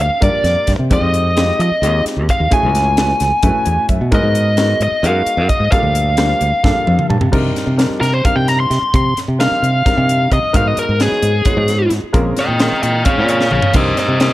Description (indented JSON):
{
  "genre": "electric jazz fusion",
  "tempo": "262 BPM (eighths)",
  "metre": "7/8",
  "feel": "straight",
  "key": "C phrygian from 7.3 s",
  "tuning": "A4 = 440 Hz",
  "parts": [
    { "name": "biting lead guitar", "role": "melody", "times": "0.0-14.3 s", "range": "Ab4 to C6", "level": "-16 LUFS", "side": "equal", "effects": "overdrive" },
    { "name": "warm concert grand piano", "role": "accompaniment", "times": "0.0-14.3 s", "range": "G3 to A5", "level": "-22 LUFS", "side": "equal", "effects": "none" },
    { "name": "fingered electric bass", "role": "bass", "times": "0.0-14.3 s", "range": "Bb1 to F3", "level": "-17 LUFS", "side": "equal", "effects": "none" },
    { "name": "crisp fusion drum kit", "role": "drums", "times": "0.2-14.3 s", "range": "crash cymbal, hi-hat, kick drum, snare drum, splash cymbal, toms", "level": "-18 LUFS", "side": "equal", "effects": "none" }
  ],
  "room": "light reverb, small room ambience",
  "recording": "dark, warm production",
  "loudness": "-12 LUFS",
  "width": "side -16 dB against mid",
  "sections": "0.0-7.3 A section; 7.3-14.3 B section",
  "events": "grand piano fill 3.4-4.1, 6.6-7.3; drum fill 6.6-7.3, 13.4-13.8; lead electric guitar solo 7.3-14.3",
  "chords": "0.0 Gm7; 0.9 Fm9; 2.5 Gbm9; 4.1 Abm9; 5.7 Gm9; 7.3 Cm9; 10.5 Abm9; 12.1 Bbm9; 13.8 Cm9",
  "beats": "0.22 0.45 0.68 | 0.91 1.14 1.37 1.60 1.83 2.06 2.29 | 2.52 2.74 2.97 3.20 3.43 3.66 3.89 | 4.12 4.35 4.58 4.81 5.04 5.27 5.50 | 5.73 5.96 6.18 6.41 6.64 6.87 7.10 | 7.33 7.56 7.79 8.02 8.25 8.48 8.71 | 8.94 9.17 9.40 9.63 9.86 10.08 10.31 | 10.54 10.77 11.00 11.23 11.46 11.69 11.92 | 12.15 12.38 12.61 12.84 13.06 13.29 13.52 | 13.75 13.98 14.21"
}